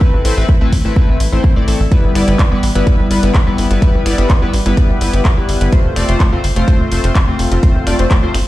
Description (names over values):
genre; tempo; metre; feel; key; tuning
progressive house; 126 BPM; 4/4; straight; unclear; A4 = 440 Hz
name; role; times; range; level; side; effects
chorused polysynth; stabs; 0.0-8.3 s; G3 to D5; -16 LUFS; left 2 dB; sidechain pumping, tape echo
electronic kick drum; drums; 0.0-8.2 s; none; -12 LUFS; equal; none
tight sequencer bass; bass; 0.1-8.4 s; F1 to B1; -15 LUFS; equal; sidechain pumping
house drum kit; drums; 0.2-8.4 s; finger snaps, handclaps, hi-hat; -23 LUFS; equal; none
room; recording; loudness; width
light reverb, digital ambience; played on a big sound system in a bare room, stone room reverb; -11 LUFS; side -16 dB against mid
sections
0.0-8.5 A section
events
none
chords
0.0 Amadd9; 1.9 Em/G; 5.7 F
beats
| 0.01 0.49 0.96 1.44 | 1.92 2.39 2.87 3.35 | 3.82 4.30 4.77 5.25 | 5.73 6.20 6.68 7.15 | 7.63 8.11